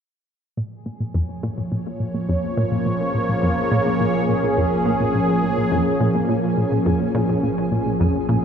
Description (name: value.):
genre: ambient, sequencer-driven space music.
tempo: 105 BPM.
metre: 4/4.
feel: straight.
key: Bb minor.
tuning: A4 = 440 Hz.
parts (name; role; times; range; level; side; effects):
sweeping resonant pad; sustained chords; 0.6-8.4 s; F3 to Db5; -20 LUFS; equal; chorus.
analog pluck; riff; 0.6-8.4 s; F2 to Bb2; -23 LUFS; equal; chorus, cassette tape, ping-pong delay.
fat analog bass; bass; 0.6-8.4 s; Bb1; -40 LUFS; equal; none.
pulsing gated texture; texture; 0.6-8.4 s; Ab4 to Ab5; -35 LUFS; left 1 dB; chorus, built-in reverb.
room: wet cathedral reverb, RT60 4.9 s.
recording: in a vast, echoing space.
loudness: -18 LUFS.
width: side -7 dB against mid.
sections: 0.6-8.4 A section.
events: fade-in on synth texture 0.6-8.4; filter sweep on synth arpeggio sound 0.6-8.4.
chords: 0.6 Bbm7.